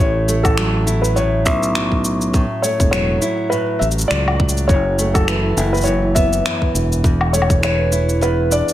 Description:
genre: folktronica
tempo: 102 BPM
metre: 4/4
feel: swing 56% on 16ths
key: A major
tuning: A4 = 441 Hz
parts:
  - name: felt-muted upright piano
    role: melody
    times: 0.0-8.7 s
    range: A4 to E5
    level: -20 LUFS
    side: left 1 dB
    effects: digital delay
  - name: nylon-string guitar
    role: arpeggios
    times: 0.0-8.7 s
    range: E2 to E4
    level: -22 LUFS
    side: right 1 dB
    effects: digital delay
  - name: fingered electric bass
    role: bass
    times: 0.0-8.6 s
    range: E1 to C#2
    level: -19 LUFS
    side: equal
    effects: none
  - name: electronic cabasa, woodblock and finger snaps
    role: drums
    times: 0.0-8.7 s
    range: none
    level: -23 LUFS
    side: left 1 dB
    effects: none
  - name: electronic kick drum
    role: drums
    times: 0.4-7.6 s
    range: none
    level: -17 LUFS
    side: equal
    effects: none
room: digital ambience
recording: none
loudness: -14 LUFS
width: side -13 dB against mid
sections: 0.0-8.7 A section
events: none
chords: 0.0 A6; 7.0 E7sus4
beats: 0.58 1.16 1.75 | 2.34 2.93 3.52 4.11 | 4.69 5.28 5.87 6.46 | 7.05 7.63 8.22

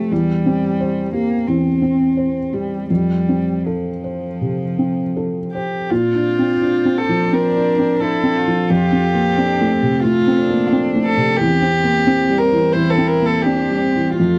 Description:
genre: neoclassical piano and strings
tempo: 79-90 BPM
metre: 4/4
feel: rubato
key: F major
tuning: A4 = 444 Hz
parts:
  - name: dark cello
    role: second line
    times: 0.0-14.4 s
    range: F3 to F4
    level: -25 LUFS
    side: equal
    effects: none
  - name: felt-muted upright piano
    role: accompaniment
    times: 0.0-14.4 s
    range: E2 to C5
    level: -20 LUFS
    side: equal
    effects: none
  - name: dark violin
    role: melody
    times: 5.5-14.4 s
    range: F4 to C5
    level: -20 LUFS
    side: equal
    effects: none
  - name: rich chamber string section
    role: sustained chords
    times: 5.9-14.4 s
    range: C4 to D5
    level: -32 LUFS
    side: equal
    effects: none
room: light reverb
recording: dry, close 1970s-style studio recording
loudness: -17 LUFS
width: mono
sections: 0.0-5.9 A section; 5.9-14.4 A section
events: none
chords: 0.1 C/E; 2.9 Fadd9; 5.9 Bbadd9; 8.7 Fadd9; 11.4 C/E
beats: | 0.11 0.79 1.47 2.16 | 2.89 3.65 4.41 5.16 | 5.90 6.62 7.32 8.01 | 8.70 9.37 10.04 10.72 | 11.39 12.06 12.74 13.45 | 14.18

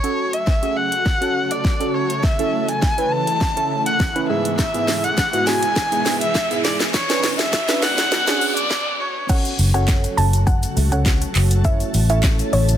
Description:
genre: dance-pop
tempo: 102 BPM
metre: 4/4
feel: straight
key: unclear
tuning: A4 = 440 Hz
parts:
  - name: dark erhu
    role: melody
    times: 0.0-9.3 s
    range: C#5 to A5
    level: -21 LUFS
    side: left 1 dB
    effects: ping-pong delay
  - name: warm analog keys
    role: accompaniment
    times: 0.0-12.6 s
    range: G#2 to E5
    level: -25 LUFS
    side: right 2 dB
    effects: chorus, sidechain pumping
  - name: shimmering ambient pad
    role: sustained chords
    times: 0.3-12.8 s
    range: B2 to A4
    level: -28 LUFS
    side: right 1 dB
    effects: chorus, built-in reverb, sidechain pumping
  - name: house drum kit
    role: drums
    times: 0.0-12.8 s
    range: crash cymbal, handclaps, hi-hat, kick drum, shaker, snare drum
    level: -21 LUFS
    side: equal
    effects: none
  - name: riser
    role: sound effects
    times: 2.2-8.7 s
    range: none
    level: -28 LUFS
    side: equal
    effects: none
  - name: egg shaker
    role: percussion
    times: 4.6-12.8 s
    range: none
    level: -37 LUFS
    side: left 12 dB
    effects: none
  - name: soft round pluck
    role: melody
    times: 9.3-12.8 s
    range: C#5 to A5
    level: -25 LUFS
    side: equal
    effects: chorus, sidechain pumping, ping-pong delay
  - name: vintage muted fingered electric bass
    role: bass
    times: 9.6-12.8 s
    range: F#1 to C#2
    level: -18 LUFS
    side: equal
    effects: sidechain pumping
room: digital ambience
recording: dense, heavily limited modern master, high-pass filter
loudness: -16 LUFS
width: side -10 dB against mid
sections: 0.0-9.3 A section; 9.3-12.8 B section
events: build-up 0.0-9.3; drum fill 0.0-8.7; filter sweep 0.0-9.3; riser 2.2-9.3; stop 8.7-9.3; drop 9.3-12.8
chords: 0.0 F#m; 2.2 A; 4.3 E/G#; 6.9 Bmadd9; 9.3 F#m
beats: 0.47 1.06 1.65 | 2.23 2.82 3.41 4.00 | 4.59 5.18 5.76 6.35 | 6.94 7.53 8.12 8.71 | 9.29 9.88 10.47 11.06 | 11.65 12.23

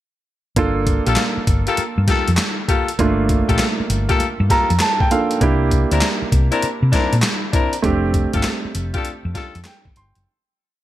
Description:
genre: R&B, new jack swing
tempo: 99 BPM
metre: 4/4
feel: swing 65% on 16ths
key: G dorian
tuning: A4 = 440 Hz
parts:
  - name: warm grand piano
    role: accompaniment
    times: 0.6-10.3 s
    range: A3 to C6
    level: -21 LUFS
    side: right 3 dB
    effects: none
  - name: hollow-body short-scale fingered electric bass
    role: bass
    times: 0.6-10.2 s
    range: F1 to C3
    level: -19 LUFS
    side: equal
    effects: none
  - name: boom bap sampler-style drum kit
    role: drums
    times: 0.6-10.3 s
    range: handclaps, hi-hat, kick drum, snare drum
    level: -20 LUFS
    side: equal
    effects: gated reverb
  - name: warm horn section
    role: stabs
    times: 1.1-9.6 s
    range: Bb3 to Bb4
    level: -23 LUFS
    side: left 4 dB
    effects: tape echo
room: light reverb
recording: none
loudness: -16 LUFS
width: side -14 dB against mid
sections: 0.6-10.3 verse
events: grand piano fill 4.2-5.4, 9.3-10.3; fade-out 7.8-10.3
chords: 0.6 Gm9; 5.4 C9; 7.8 F69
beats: | 0.56 1.17 1.77 2.38 | 2.99 3.59 4.20 4.80 | 5.41 6.02 6.62 7.23 | 7.83 8.44 9.05 9.65

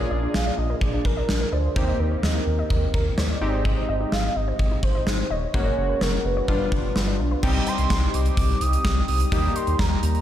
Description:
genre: synth-pop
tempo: 127 BPM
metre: 4/4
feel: straight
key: Eb major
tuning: A4 = 440 Hz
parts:
  - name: warm velvety synth lead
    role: melody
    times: 0.0-10.2 s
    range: Bb4 to Eb6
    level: -28 LUFS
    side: right 2 dB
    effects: chorus, ping-pong delay
  - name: warm analog keys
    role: accompaniment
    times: 0.0-10.2 s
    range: G3 to Ab4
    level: -29 LUFS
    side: left 2 dB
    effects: chorus
  - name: warbly dusty pluck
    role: arpeggios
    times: 0.0-7.4 s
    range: Db4 to Eb5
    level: -32 LUFS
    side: left 5 dB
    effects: chorus, ping-pong delay
  - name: round analog bass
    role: bass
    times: 0.0-10.2 s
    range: Eb1 to Eb2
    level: -24 LUFS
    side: equal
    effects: none
  - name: gated 80s drum kit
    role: drums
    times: 0.3-10.2 s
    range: crash cymbal, hi-hat, kick drum, snare drum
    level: -25 LUFS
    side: equal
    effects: none
room: light reverb, small room ambience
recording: played on a big sound system in a bare room, stone room reverb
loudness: -20 LUFS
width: side -11 dB against mid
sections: 0.0-7.4 A section; 7.4-10.2 B section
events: none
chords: 0.0 Bb7; 1.8 Eb6; 3.4 Abmaj7; 5.5 Gbadd9; 6.5 G7; 7.4 Cm; 9.3 Eb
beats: 0.34 0.82 1.29 | 1.76 2.23 2.71 3.18 | 3.65 4.12 4.60 5.07 | 5.54 6.01 6.49 6.96 | 7.43 7.90 8.38 8.85 | 9.32 9.79

